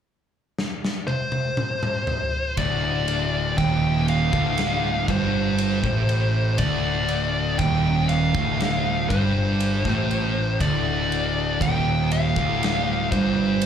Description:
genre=stoner and doom metal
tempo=60 BPM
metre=4/4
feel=straight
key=D phrygian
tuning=A4 = 440 Hz
part: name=big rock drum kit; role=drums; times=0.6-13.7 s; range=kick drum, ride cymbal, snare drum, toms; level=-29 LUFS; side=left 1 dB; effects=none
part: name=fuzz lead guitar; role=melody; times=1.1-13.7 s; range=C5 to G5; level=-26 LUFS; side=left 1 dB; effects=distortion, tape echo
part: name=thick fuzz guitar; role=riff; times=2.6-13.7 s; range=D2 to A2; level=-27 LUFS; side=left 9 dB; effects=distortion
part: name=thick fuzz guitar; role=riff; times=2.6-13.7 s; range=D2 to A2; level=-24 LUFS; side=right 6 dB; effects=distortion
part: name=fuzz picked electric bass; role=bass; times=2.6-13.7 s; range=D1 to A1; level=-28 LUFS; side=left 2 dB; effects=overdrive
room=little or no reverb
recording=live gig heard through the venue's PA, club reverb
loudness=-20 LUFS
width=side -8 dB against mid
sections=0.0-2.6 A section; 2.6-13.7 B section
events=drum fill 0.6-2.6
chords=0.0 N.C.; 2.6 Dm

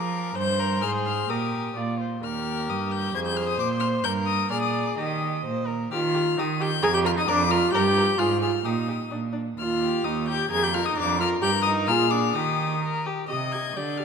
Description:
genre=quick classical-period movement for string quartet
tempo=130 BPM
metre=2/4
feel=straight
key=Eb major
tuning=A4 = 439 Hz
part: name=warm violin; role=melody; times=0.0-14.0 s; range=D6 to Ab6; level=-28 LUFS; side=left 10 dB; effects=none
part: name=rich violin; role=second line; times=0.0-14.0 s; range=D4 to Eb5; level=-30 LUFS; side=left 4 dB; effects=none
part: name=dark viola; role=accompaniment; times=0.0-14.0 s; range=D4 to Eb5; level=-27 LUFS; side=right 1 dB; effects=none
part: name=rich cello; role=bass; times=0.0-14.0 s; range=Eb2 to F3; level=-28 LUFS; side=right 5 dB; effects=none
room=moderate scoring stage reverb, RT60 2.0 s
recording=none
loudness=-22 LUFS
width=side -6 dB against mid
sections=0.0-5.9 A section; 5.9-13.3 B section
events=none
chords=0.4 Gmadd11; 0.8 Fm/Ab; 1.3 Eb/Bb; 1.8 Bb; 2.2 Eb; 3.1 Bb5/F; 4.1 Eb/G; 4.5 Bb; 5.0 Eb; 6.8 Bb5/F; 7.7 N.C.; 8.2 Fm/Ab; 8.7 Eb5/Bb; 9.1 N.C.; 9.6 Eb; 10.5 Bb5/F; 11.4 Eb/G; 11.9 Bb7; 12.3 Eb; 13.3 Cm

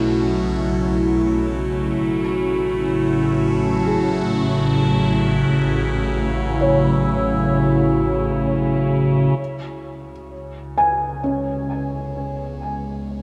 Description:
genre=ambient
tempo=65 BPM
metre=4/4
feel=straight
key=C# minor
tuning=A4 = 439 Hz
part: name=evolving wavetable pad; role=sustained chords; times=0.0-13.2 s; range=B2 to G#4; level=-22 LUFS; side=equal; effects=phaser, built-in reverb, shimmer reverb
part: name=felt-muted upright piano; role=arpeggios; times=0.0-13.2 s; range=F#3 to G#5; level=-28 LUFS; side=equal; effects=analog chorus, diffuse ambient delay, shimmer reverb
part: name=clear studio double bass section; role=bass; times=0.0-13.2 s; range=A1 to C#2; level=-28 LUFS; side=equal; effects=none
part: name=organ-like drone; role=drone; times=0.0-13.2 s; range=C#3 to C#4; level=-28 LUFS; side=equal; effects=ensemble chorus, built-in reverb
room=wet plate reverb, RT60 3.7 s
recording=dreamy mix soaked in reverb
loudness=-20 LUFS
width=mono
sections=0.0-9.4 A section; 9.4-13.2 B section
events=none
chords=0.0 B7sus4; 2.0 A6; 9.4 C#m7

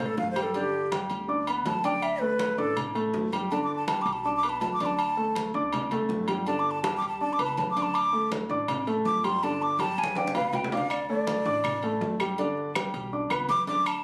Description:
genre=latin, salsa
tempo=162 BPM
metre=4/4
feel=straight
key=unclear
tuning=A4 = 440 Hz
part: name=mellow hollow jazz flute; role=melody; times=0.0-14.0 s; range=G4 to D6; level=-30 LUFS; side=equal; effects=none
part: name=warm upright piano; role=accompaniment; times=0.0-14.0 s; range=D3 to D6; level=-32 LUFS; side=equal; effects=none
part: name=upright bass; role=bass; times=0.0-14.0 s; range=G1 to D2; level=-42 LUFS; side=equal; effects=none
part: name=congas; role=percussion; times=0.0-14.0 s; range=none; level=-39 LUFS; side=equal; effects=none
part: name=agogo bells and timbales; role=percussion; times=0.4-14.0 s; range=none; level=-36 LUFS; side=equal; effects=none
part: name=claves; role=percussion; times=10.9-14.0 s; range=none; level=-36 LUFS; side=equal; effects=none
room=moderate studio reverb, RT60 0.6 s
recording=recorded on a phone in the room, club reverb, compression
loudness=-28 LUFS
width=mono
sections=0.0-14.0 A section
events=flute solo 0.0-14.0; drum fill 9.8-10.9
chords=0.0 N.C.; 0.5 G; 2.0 D5; 3.5 G; 5.0 D5; 6.5 G; 7.9 D5; 9.4 G; 10.9 D5; 12.4 G

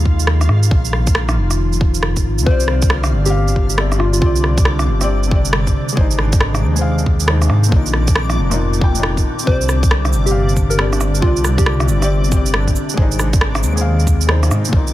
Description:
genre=future garage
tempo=137 BPM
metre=4/4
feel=swing 64% on 16ths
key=C minor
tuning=A4 = 439 Hz
part: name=warbly tape-like pad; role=sustained chords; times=0.0-14.9 s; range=Bb2 to Ab4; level=-23 LUFS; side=equal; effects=chorus, built-in reverb, sidechain pumping
part: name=dark detuned saw bass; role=bass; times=0.0-14.9 s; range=F1 to Ab2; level=-16 LUFS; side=equal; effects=sidechain pumping
part: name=backwards swelling texture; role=texture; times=0.0-14.9 s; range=D4 to D6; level=-30 LUFS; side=equal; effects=built-in reverb
part: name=electronic kick drum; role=drums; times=0.1-14.8 s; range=none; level=-15 LUFS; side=equal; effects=studio reverb
part: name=electronic shaker, rim click and cabasa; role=drums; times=0.2-14.9 s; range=none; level=-21 LUFS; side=right 2 dB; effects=studio reverb
part: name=felt-muted upright piano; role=accompaniment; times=2.4-14.9 s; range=Bb2 to G5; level=-24 LUFS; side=left 3 dB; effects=sidechain pumping, dub echo
part: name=soft struck synth lead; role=melody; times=2.5-4.6, 9.5-12.0 s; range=F4 to C5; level=-23 LUFS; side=left 1 dB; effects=chorus, digital delay
room=little or no reverb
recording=none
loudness=-13 LUFS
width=side -15 dB against mid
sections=0.0-14.9 A section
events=none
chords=0.0 Ab; 0.7 Bbsus4; 2.5 Csus2; 6.0 Ab; 7.7 Bbsus4; 9.5 Csus2; 13.0 Ab

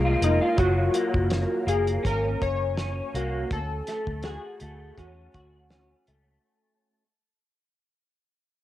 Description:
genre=indie pop, bedroom pop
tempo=82 BPM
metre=4/4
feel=swing 55% on 16ths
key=unclear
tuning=A4 = 436 Hz
part: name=electric guitar through a small old amp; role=accompaniment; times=0.0-7.0 s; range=Gb3 to F#4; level=-28 LUFS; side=left 1 dB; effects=ensemble chorus, warbly pitch drift, cassette tape
part: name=vintage muted fingered electric bass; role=bass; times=0.0-6.4 s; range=F1 to Fb2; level=-27 LUFS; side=equal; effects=transformer saturation
part: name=warm analog keys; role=melody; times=0.2-6.0 s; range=Eb4 to Db5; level=-29 LUFS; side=left 1 dB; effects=wide subtle chorus, cassette tape
part: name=cloth-damped thuddy drum kit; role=drums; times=0.2-6.3 s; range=hi-hat, kick drum, snare drum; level=-30 LUFS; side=equal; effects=cassette tape
room=studio reverb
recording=home recording on cassette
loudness=-23 LUFS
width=side -14 dB against mid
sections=0.6-6.4 A section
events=fade-out 0.6-6.4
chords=0.0 Db6 (rootless); 0.6 Gb; 3.5 Dmaj7

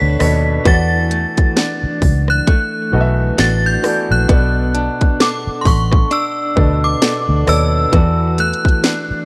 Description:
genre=contemporary R&B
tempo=66 BPM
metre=4/4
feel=swing 58% on 16ths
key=B minor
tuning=A4 = 441 Hz
part: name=synth chime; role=melody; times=0.0-9.2 s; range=C6 to B6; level=-22 LUFS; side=equal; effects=ensemble chorus, delay
part: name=clear grand piano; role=accompaniment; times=0.0-9.2 s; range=B2 to E5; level=-25 LUFS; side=equal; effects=none
part: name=direct-recorded clean electric guitar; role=arpeggios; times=0.0-9.2 s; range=E3 to C#5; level=-25 LUFS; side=equal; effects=tremolo, delay
part: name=vintage muted fingered electric bass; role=bass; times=0.0-9.1 s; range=A1 to E2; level=-18 LUFS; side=equal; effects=none
part: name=large celesta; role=texture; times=0.0-7.8 s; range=F#5 to F#6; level=-35 LUFS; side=equal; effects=delay
part: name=trap drum kit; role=drums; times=0.2-9.1 s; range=hi-hat, kick drum, rim click, snare drum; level=-17 LUFS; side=equal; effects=none
room=light reverb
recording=dark, warm production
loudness=-15 LUFS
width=mono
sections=0.0-9.2 A section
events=none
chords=0.0 Bm9; 0.7 E9sus4; 4.3 Bm9; 7.9 E9sus4

